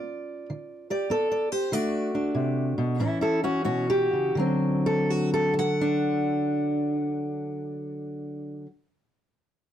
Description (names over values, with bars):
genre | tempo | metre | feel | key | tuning
acoustic country blues, solo or duo | 85-102 BPM | 4/4 | swing 67% on 8ths | D mixolydian | A4 = 440 Hz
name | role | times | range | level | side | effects
fingerpicked steel-string acoustic guitar | solo | 0.0-8.7 s | A2 to F#5 | -24 LUFS | equal | none
room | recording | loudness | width
light reverb | dark, warm production | -23 LUFS | side -10 dB against mid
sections
0.0-4.3 A section; 4.3-7.2 B section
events
slowing down 0.0-4.3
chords
0.0 G7; 1.7 D7; 3.0 A; 4.3 D7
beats
0.50 1.10 | 1.71 2.34 2.98 3.65 | 4.34 5.04 5.75 6.45